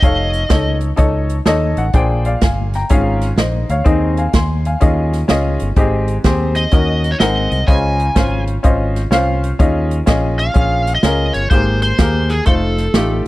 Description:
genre	uptempo gospel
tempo	126 BPM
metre	4/4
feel	swing 66% on 8ths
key	Ab major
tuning	A4 = 440 Hz
part	overdriven slide guitar	melody	0.0-0.8, 6.6-13.2 s	Ab4 to Ab5	-19 LUFS	equal	none
part	clear grand piano	accompaniment	0.0-13.3 s	Ab2 to C6	-18 LUFS	left 2 dB	none
part	fingered electric bass	bass	0.0-13.2 s	F1 to Eb2	-18 LUFS	equal	none
part	swinging big-band drum kit	drums	0.0-13.3 s	hi-hat, kick drum, snare drum	-16 LUFS	equal	none
room	small room reverb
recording	dry, close 1970s-style studio recording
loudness	-13 LUFS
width	side -18 dB against mid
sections	0.0-13.3 A section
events	grand piano fill 1.2-1.9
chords	0.0 Faug7; 1.9 Bb13; 2.9 Db/Ab; 3.9 Ab/Eb; 4.8 Eb9sus4; 5.8 Abmaj7; 6.7 Ebm7; 7.2 Ab9; 7.7 Dbmaj9; 9.6 Eb9sus4; 11.5 Abmaj9; 12.5 F7

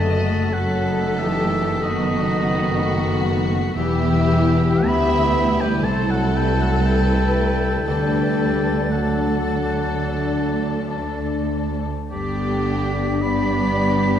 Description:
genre	classical, slow romantic movement for symphony orchestra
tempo	52-62 BPM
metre	4/4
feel	rubato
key	unclear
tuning	A4 = 440 Hz
part	warm studio violin section	melody	0.0-14.2 s	F#4 to A4	-31 LUFS	left 6 dB	none
part	bright concert flute	second line	0.0-14.2 s	A6 to B6	-32 LUFS	left 1 dB	none
part	dark clarinet	second line	0.0-14.2 s	G4 to A4	-29 LUFS	left 2 dB	none
part	warm oboe	second line	0.0-14.2 s	D5 to B5	-27 LUFS	right 2 dB	none
part	warm symphonic violin section	second line	0.0-14.2 s	F#4 to E5	-30 LUFS	left 2 dB	none
part	warm chamber viola section	accompaniment	0.0-14.2 s	A3 to E4	-28 LUFS	right 1 dB	none
part	mellow French horn section	sustained chords	0.0-14.2 s	D3 to B3	-26 LUFS	left 3 dB	none
part	concert harp	arpeggios	0.0-14.2 s	E2 to B4	-28 LUFS	left 7 dB	none
part	warm chamber cello section	bass	0.0-14.2 s	C2 to G2	-25 LUFS	right 2 dB	none
part	warm studio double bass section	bass	0.0-14.2 s	E1 to D2	-25 LUFS	right 3 dB	none
room	moderate scoring stage reverb, RT60 1.6 s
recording	dark, warm production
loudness	-18 LUFS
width	side -9 dB against mid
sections	0.0-14.2 A section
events	none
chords	0.0 B7/F#; 3.8 Em; 5.8 Am/C; 7.9 D; 12.1 G

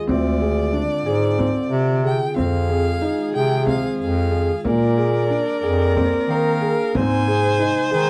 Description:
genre	contemporary instrumental, chamber music in an uneven meter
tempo	183 BPM (eighths)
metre	7/8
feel	straight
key	F dorian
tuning	A4 = 439 Hz
part	rich violin	melody	0.0-8.1 s	D5 to Ab5	-29 LUFS	equal	none
part	glassy FM pad	sustained chords	0.0-8.1 s	C3 to Ab4	-33 LUFS	equal	ensemble chorus, built-in reverb
part	felt-muted upright piano	arpeggios	0.0-8.1 s	Bb3 to Ab4	-25 LUFS	equal	none
part	clear bass clarinet	bass	0.1-8.1 s	D2 to Eb3	-23 LUFS	equal	none
part	frame drum	percussion	0.1-8.1 s	none	-29 LUFS	equal	none
part	warm viola	second line	2.4-8.1 s	Ab4 to C5	-27 LUFS	equal	none
room	light reverb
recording	dark, warm production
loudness	-20 LUFS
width	mono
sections	0.0-8.1 A section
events	none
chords	0.1 Dm7b5; 2.4 Fm7; 4.7 Bb7; 6.9 Ab

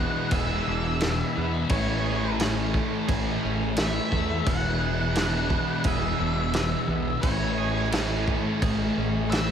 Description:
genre	rock, shoegaze and dream pop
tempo	87 BPM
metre	4/4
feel	straight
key	E mixolydian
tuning	A4 = 438 Hz
part	octave-fuzz lead guitar	melody	0.0-9.5 s	C#5 to F#5	-31 LUFS	left 1 dB	distortion, digital delay
part	twangy electric guitar	arpeggios	0.0-9.5 s	E3 to G#4	-35 LUFS	right 10 dB	lush chorus, digital delay
part	overdriven electric guitar	riff	0.0-9.5 s	E2 to E4	-31 LUFS	right 10 dB	reverse reverb
part	thick fuzz guitar	riff	0.0-9.5 s	E2 to A3	-29 LUFS	left 9 dB	distortion, lush chorus
part	growling fingered electric bass	bass	0.0-9.5 s	E1 to E2	-30 LUFS	equal	overdrive
part	loose indie drum kit	drums	0.3-9.5 s	crash cymbal, kick drum, snare drum	-29 LUFS	equal	none
room	light reverb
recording	none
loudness	-23 LUFS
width	side -8 dB against mid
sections	0.0-9.5 A section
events	none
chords	0.0 E7; 1.7 Amaj7; 4.5 E7; 7.2 Amaj7

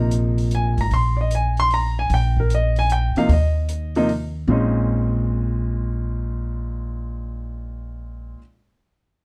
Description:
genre	modal jazz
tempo	151 BPM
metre	3/4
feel	swing 66% on 8ths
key	Bb minor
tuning	A4 = 437 Hz
part	warm baby grand piano	accompaniment	0.0-8.4 s	Bb2 to C6	-25 LUFS	equal	none
part	upright bass	bass	0.0-8.3 s	Ab1 to Eb2	-24 LUFS	equal	none
part	open jazz drum kit	drums	0.1-4.2 s	hi-hat, kick drum	-38 LUFS	equal	none
room	light reverb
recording	dark, warm production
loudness	-21 LUFS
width	mono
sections	0.0-4.5 A section; 4.5-6.9 B section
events	none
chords	0.0 Abadd9; 4.5 Bbm11

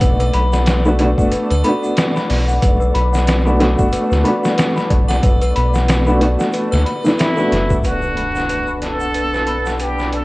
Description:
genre	trip hop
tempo	92 BPM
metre	4/4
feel	swing 57% on 16ths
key	B minor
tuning	A4 = 440 Hz
part	dark upright piano	accompaniment	0.0-10.2 s	A3 to F#5	-20 LUFS	equal	tremolo, low-pass filter, tape echo
part	worn celesta	arpeggios	0.0-10.2 s	A4 to B5	-22 LUFS	left 2 dB	vintage 12-bit sampler grit, low-pass filter, digital delay
part	round analog bass	bass	0.0-10.2 s	F#1 to D2	-17 LUFS	equal	transformer saturation
part	trip hop sampler-style drum kit	drums	0.0-10.2 s	hi-hat, kick drum, snare drum	-19 LUFS	equal	overdrive, high-pass filter on kick, high-pass filter on hats, high-pass filter on snare, high-pass filter on room
part	egg shaker and triangle	percussion	0.0-10.1 s	none	-37 LUFS	right 1 dB	none
part	flickering grainy texture	texture	0.0-10.2 s	A3 to D5	-30 LUFS	equal	none
part	trumpet with plunger mute	melody	7.2-10.2 s	E4 to A4	-21 LUFS	equal	none
part	clear studio string section	sustained chords	7.8-10.2 s	D4	-27 LUFS	equal	low-pass filter
part	impact	sound effects	7.8-10.2 s	none	-28 LUFS	equal	none
room	light reverb, small room ambience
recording	worn, warbling old tape, cassette tape, vinyl crackle, warbly pitch drift, nothing above 10.8 kHz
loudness	-14 LUFS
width	side -21 dB against mid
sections	0.0-7.8 A section; 7.8-10.2 B section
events	impact 7.8-10.2; filter sweep on string section 7.8-10.2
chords	0.0 Bm7

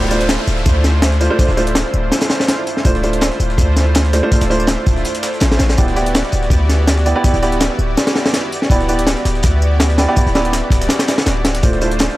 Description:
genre	drum and bass, jungle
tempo	164 BPM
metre	4/4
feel	swing 54% on 16ths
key	D dorian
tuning	A4 = 440 Hz
part	lush unison pad	sustained chords	0.0-12.2 s	A3 to D5	-21 LUFS	equal	chorus, vintage 12-bit sampler grit
part	warm baby grand piano	stabs	0.0-12.0 s	A3 to D5	-20 LUFS	right 2 dB	dub echo
part	warm 808-style bass	bass	0.0-12.1 s	D1 to D2	-16 LUFS	equal	none
part	breakbeat sampler-style drum kit	drums	0.0-12.2 s	hi-hat, snare drum, tambourine	-27 LUFS	right 1 dB	high-pass filter on perc, high-pass filter on snare, high-pass filter on hats
part	downlifter and swell	sound effects	0.0-2.9, 11.3-11.6 s	none	-30 LUFS	equal	none
part	crunchy breakbeat drum kit	drums	0.1-12.1 s	hi-hat, kick drum, snare drum	-16 LUFS	equal	none
room	light reverb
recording	dry, gritty hardware recording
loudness	-12 LUFS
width	side -17 dB against mid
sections	0.0-12.2 A section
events	none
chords	0.0 Dm7; 5.8 Em7/D; 11.6 Dm7

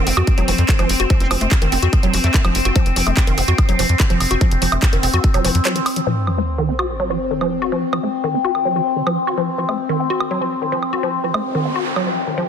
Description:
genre	psychedelic trance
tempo	145 BPM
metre	4/4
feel	straight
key	unclear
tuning	A4 = 440 Hz
part	overtone-sweeping drone	sustained chords	0.0-12.5 s	C4	-22 LUFS	left 3 dB	chorus, built-in reverb, sidechain pumping
part	woody wave-folded pluck	riff	0.0-12.5 s	Eb3 to Gb4	-22 LUFS	moving between left 3 dB and right 4 dB	chorus, auto-pan, sidechain pumping, ping-pong delay
part	tight sequencer bass	bass	0.0-5.6 s	F1 to F2	-19 LUFS	equal	tube saturation
part	drum and bass drum kit	drums	0.1-12.0 s	handclaps, hi-hat, woodblock	-23 LUFS	right 1 dB	studio reverb
part	electronic kick drum	drums	0.3-5.3 s	none	-17 LUFS	equal	studio reverb
part	metallic wobble bass	second line	1.2-2.4 s	A3 to C4	-32 LUFS	right 2 dB	none
part	sub drop and noise sweep	sound effects	6.1-7.7, 11.2-12.5 s	none	-25 LUFS	equal	none
room	light reverb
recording	dense, heavily limited modern master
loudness	-15 LUFS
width	side -8 dB against mid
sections	0.0-6.1 A section; 6.1-12.5 B section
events	break 5.7-6.1; impact 6.1-7.7; noise sweep 11.2-12.5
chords	0.0 F5

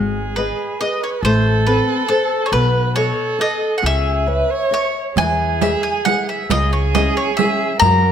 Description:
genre	italian folk, Italian serenade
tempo	137 BPM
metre	3/4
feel	rubato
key	unclear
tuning	A4 = 437 Hz
part	dark violin	second line	0.0-8.1 s	G#4 to C#5	-23 LUFS	right 5 dB	none
part	nylon-string guitar	accompaniment	0.0-8.1 s	C#3 to E5	-22 LUFS	left 2 dB	none
part	upright bass	bass	0.0-8.1 s	G#1 to F#2	-19 LUFS	equal	none
part	bowl-back mandolin	melody	0.4-8.1 s	A4 to A#5	-20 LUFS	left 1 dB	none
part	riq	percussion	5.2-8.0 s	none	-22 LUFS	right 6 dB	none
room	moderate recital hall reverb, RT60 1.6 s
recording	none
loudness	-15 LUFS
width	side -8 dB against mid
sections	0.0-8.1 A section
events	none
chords	0.0 G#m; 1.2 Amadd9; 2.5 B7; 3.8 C#madd9; 5.2 E; 6.5 C#m

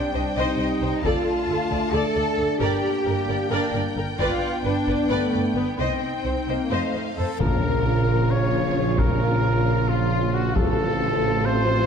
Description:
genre	cinematic, epic orchestral film score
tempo	265 BPM (eighths)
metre	7/8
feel	straight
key	Bb harmonic minor from 7.4 s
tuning	A4 = 440 Hz
part	rich symphonic violin section	melody	0.0-11.9 s	F4 to A5	-30 LUFS	left 5 dB	none
part	mellow French horn section	sustained chords	0.0-11.9 s	Db3 to F4	-28 LUFS	left 4 dB	none
part	rich symphonic cello section	bass	0.0-11.9 s	A2 to A4	-28 LUFS	right 2 dB	none
part	rich symphonic violin section	second line	0.1-11.9 s	F4 to Eb5	-32 LUFS	left 3 dB	none
part	warm symphonic viola section	accompaniment	0.1-11.9 s	F3 to C5	-31 LUFS	equal	none
part	rich studio double bass section	bass	0.1-11.9 s	G1 to F2	-27 LUFS	right 2 dB	none
part	taiko ensemble	drums	1.0-11.0 s	none	-28 LUFS	left 1 dB	none
part	reverse cymbal and sub drop	sound effects	7.1-9.0 s	none	-32 LUFS	left 2 dB	none
part	clear trumpet	stabs	7.2-11.9 s	F4 to Db5	-26 LUFS	right 1 dB	none
part	warm tuba	bass	7.4-11.9 s	A1 to Bb1	-29 LUFS	right 3 dB	none
part	timpani	percussion	7.4-8.0 s	Bb2	-31 LUFS	left 4 dB	none
room	wet scoring stage reverb, RT60 1.8 s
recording	dark, warm production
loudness	-20 LUFS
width	side -7 dB against mid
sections	0.0-7.4 A section; 7.4-11.9 B section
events	reverse cymbal 7.1; impact 7.4-9.0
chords	0.0 Cm; 1.0 Dm; 2.6 Gm; 4.2 G7; 5.8 Cm; 6.7 F7; 7.4 Bbm; 10.6 F/A

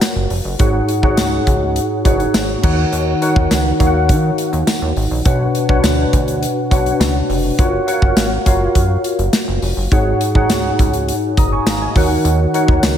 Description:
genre	1980s-style pop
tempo	103 BPM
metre	4/4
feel	straight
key	unclear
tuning	A4 = 442 Hz
part	mellow tine electric piano	accompaniment	0.0-13.0 s	G#2 to D#6	-16 LUFS	left 1 dB	ensemble chorus
part	modern studio drum kit	drums	0.0-13.0 s	crash cymbal, hi-hat, kick drum, snare drum, tambourine	-17 LUFS	equal	none
part	chorused synth bass	bass	0.2-13.0 s	E#1 to D#3	-19 LUFS	equal	none
room	moderate lush hall reverb, RT60 1.9 s, small room ambience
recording	dreamy mix soaked in reverb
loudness	-13 LUFS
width	side -9 dB against mid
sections	0.0-13.0 A section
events	none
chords	0.0 F#maj7; 0.6 G#7sus4; 2.6 D#m7; 5.3 Bmadd9; 7.6 F#maj7; 9.9 G#7sus4; 12.0 D#m7

